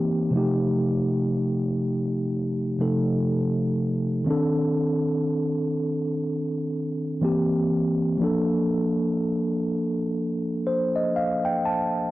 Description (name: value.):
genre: R&B.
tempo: 61 BPM.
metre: 4/4.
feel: swing 58% on 16ths.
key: C dorian.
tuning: A4 = 440 Hz.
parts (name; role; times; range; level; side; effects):
mellow tine electric piano; solo; 0.0-12.1 s; C3 to A5; -22 LUFS; equal; medium stereo tremolo.
room: light reverb.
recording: dry, gritty hardware recording.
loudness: -22 LUFS.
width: side -17 dB against mid.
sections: 0.0-12.1 A section.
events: tine electric piano fill 10.2-12.1.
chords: 0.3 F9/C; 4.3 Cm69; 7.2 C7; 8.2 Bbmaj7.